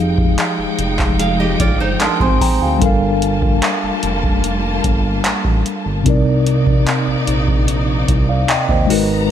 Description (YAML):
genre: contemporary R&B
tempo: 74 BPM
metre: 4/4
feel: straight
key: unclear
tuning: A4 = 439 Hz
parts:
  - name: mellow tine electric piano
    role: accompaniment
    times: 0.0-9.3 s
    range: C3 to Eb6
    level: -18 LUFS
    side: left 2 dB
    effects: medium stereo tremolo
  - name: warm studio string section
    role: sustained chords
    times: 0.0-9.3 s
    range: C3 to Bb5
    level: -23 LUFS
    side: left 1 dB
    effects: sidechain pumping
  - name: smooth gliding synth bass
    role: bass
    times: 0.0-9.3 s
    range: F1 to Eb2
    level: -20 LUFS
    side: right 1 dB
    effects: none
  - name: booming analog drum machine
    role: drums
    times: 0.2-9.1 s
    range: handclaps, hi-hat, kick drum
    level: -18 LUFS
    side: right 1 dB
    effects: gated reverb
  - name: nylon-string guitar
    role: arpeggios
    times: 1.2-2.8 s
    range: C4 to F5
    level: -21 LUFS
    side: right 5 dB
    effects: digital delay
  - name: glassy wavetable pluck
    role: texture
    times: 8.9-9.3 s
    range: Gb4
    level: -30 LUFS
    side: right 6 dB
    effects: chorus, digital delay
room: light reverb, digital ambience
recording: bright 1980s-style digital production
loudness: -13 LUFS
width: side -10 dB against mid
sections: 0.0-9.3 A section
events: none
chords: 0.0 Fm9; 2.8 Gm9; 6.1 Cm9